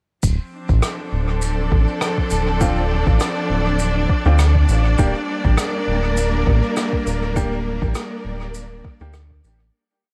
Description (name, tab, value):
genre	ambient dub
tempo	101 BPM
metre	4/4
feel	swing 55% on 16ths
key	D minor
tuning	A4 = 442 Hz
part	warm symphonic string section	sustained chords	0.2-9.7 s	F3 to D5	-25 LUFS	equal	none
part	round analog bass	bass	0.2-9.7 s	D1 to D2	-21 LUFS	equal	none
part	electronic kick drum	drums	0.2-9.4 s	none	-23 LUFS	equal	none
part	shaker and rim click	drums	0.2-9.6 s	none	-31 LUFS	equal	dub echo
part	bright upright piano	stabs	2.6-9.1 s	Bb3 to G4	-31 LUFS	equal	dub echo
room	studio ambience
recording	none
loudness	-19 LUFS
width	mono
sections	0.2-9.7 groove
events	fade-out 6.6-9.7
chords	0.2 Dm7; 5.0 Gm/D